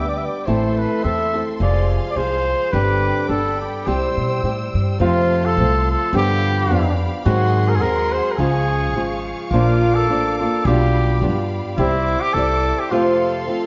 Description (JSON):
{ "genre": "mexican folk, mariachi", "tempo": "106 BPM", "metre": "2/4", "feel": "swing 54% on 8ths", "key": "C major", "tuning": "A4 = 439 Hz", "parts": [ { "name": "mellow trumpet", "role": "melody", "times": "0.0-13.5 s", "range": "E4 to E5", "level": "-24 LUFS", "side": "equal", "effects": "none" }, { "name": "flamenco guitar", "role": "accompaniment", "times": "0.0-13.7 s", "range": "F2 to D5", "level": "-24 LUFS", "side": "equal", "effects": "none" }, { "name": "warm studio violin section", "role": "sustained chords", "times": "0.0-13.7 s", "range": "Bb3 to E6", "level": "-33 LUFS", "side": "equal", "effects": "none" }, { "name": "upright bass", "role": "bass", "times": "0.0-12.7 s", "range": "F1 to B2", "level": "-23 LUFS", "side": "equal", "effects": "none" } ], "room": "moderate recital hall reverb, RT60 1.8 s", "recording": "nothing above 7.5 kHz", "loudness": "-19 LUFS", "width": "mono", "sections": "0.0-5.0 A section; 5.0-13.7 B section", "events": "none", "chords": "0.5 Am; 1.6 Fm; 2.7 Gsus4; 3.3 Gadd9; 3.9 C; 5.0 F; 6.1 G7; 7.3 Ab7; 8.4 Db; 9.5 Bb; 10.7 G7/B; 11.8 Cadd9; 12.9 F" }